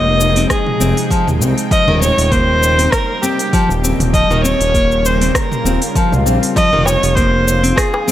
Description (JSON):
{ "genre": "organic downtempo", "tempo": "99 BPM", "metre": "4/4", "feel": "swing 55% on 16ths", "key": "unclear", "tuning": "A4 = 440 Hz", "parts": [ { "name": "rich kamancheh", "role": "melody", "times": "0.0-8.1 s", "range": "G4 to Eb5", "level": "-16 LUFS", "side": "equal", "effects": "vintage 12-bit sampler grit, tape echo" }, { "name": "bowed-like drone", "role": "sustained chords", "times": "0.0-8.1 s", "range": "C3 to G5", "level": "-22 LUFS", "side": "right 1 dB", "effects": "built-in reverb, sidechain pumping" }, { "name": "nylon-string guitar", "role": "arpeggios", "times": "0.0-8.1 s", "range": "Eb3 to C4", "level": "-19 LUFS", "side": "left 1 dB", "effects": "tape echo" }, { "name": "smooth gliding synth bass", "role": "bass", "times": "0.0-7.7 s", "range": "Eb1 to Db2", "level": "-16 LUFS", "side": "equal", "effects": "none" }, { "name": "deep house drum kit", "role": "drums", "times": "0.2-8.1 s", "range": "cabasa, hi-hat, rim click, toms", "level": "-21 LUFS", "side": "equal", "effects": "none" }, { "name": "electronic kick drum", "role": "drums", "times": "0.5-7.9 s", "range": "none", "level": "-18 LUFS", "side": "equal", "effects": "none" }, { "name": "swell", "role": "sound effects", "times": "5.6-6.6 s", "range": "none", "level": "-25 LUFS", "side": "left 2 dB", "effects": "none" }, { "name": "darbuka", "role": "percussion", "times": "6.9-8.0 s", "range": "none", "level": "-22 LUFS", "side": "left 2 dB", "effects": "none" } ], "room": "light reverb, digital ambience", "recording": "none", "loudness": "-11 LUFS", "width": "side -12 dB against mid", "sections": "0.0-8.1 A section", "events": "swell 5.6-6.6", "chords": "0.0 Fm7; 1.7 Eb7; 6.6 Fm7" }